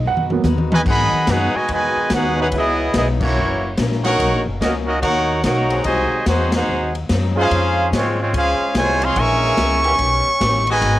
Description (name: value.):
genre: jazz, big band swing.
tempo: 145 BPM.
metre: 4/4.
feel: swing 64% on 8ths.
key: G# minor.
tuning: A4 = 440 Hz.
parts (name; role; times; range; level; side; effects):
picked swing-style acoustic guitar; accompaniment; 0.0-11.0 s; F#2 to B4; -30 LUFS; left 7 dB; none.
upright bass; bass; 0.0-11.0 s; F#1 to G#2; -22 LUFS; left 1 dB; none.
swinging big-band drum kit; drums; 0.2-10.9 s; crash cymbal, hi-hat, kick drum, ride cymbal, snare drum, toms; -23 LUFS; left 1 dB; none.
brilliant trumpet section; melody; 0.7-11.0 s; G#3 to C#6; -18 LUFS; equal; cassette tape.
clear trombone section; second line; 0.7-11.0 s; B2 to F#4; -24 LUFS; right 5 dB; cassette tape.
bright trombone section; sustained chords; 2.4-9.9 s; B2 to B#4; -26 LUFS; left 2 dB; cassette tape.
room: light reverb, small room reverb.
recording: home recording on cassette.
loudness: -15 LUFS.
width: side -15 dB against mid.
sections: 0.9-11.0 A section.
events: drum fill 0.0-0.9; band accent 3.2, 6.5.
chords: 0.0 G#m7; 2.5 C#m9; 3.4 F#7; 4.2 Bmaj9; 5.8 G#7; 7.5 C#maj7; 9.2 A#m7b5; 10.0 D#7b13.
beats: 0.04 0.45 | 0.87 1.28 1.70 2.11 | 2.53 2.94 3.36 3.77 | 4.19 4.60 5.02 5.43 | 5.85 6.26 6.68 7.09 | 7.50 7.92 8.33 8.75 | 9.16 9.58 9.99 10.41 | 10.82.